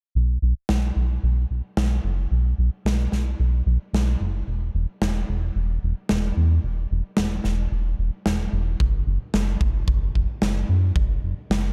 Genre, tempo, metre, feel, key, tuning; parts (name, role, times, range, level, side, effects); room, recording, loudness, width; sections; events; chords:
synthwave; 111 BPM; 4/4; straight; A4 = 438 Hz
chorused synth bass; bass; 0.2-11.7 s; E1 to F#2; -24 LUFS; equal
snare drum; drums; 0.7-11.6 s; -29 LUFS; equal
kick drum; drums; 8.8-11.1 s; -25 LUFS; equal
light reverb; dark, warm production; -23 LUFS; mono
0.2-11.7 A section
filter sweep on analog synth bass 0.2-11.7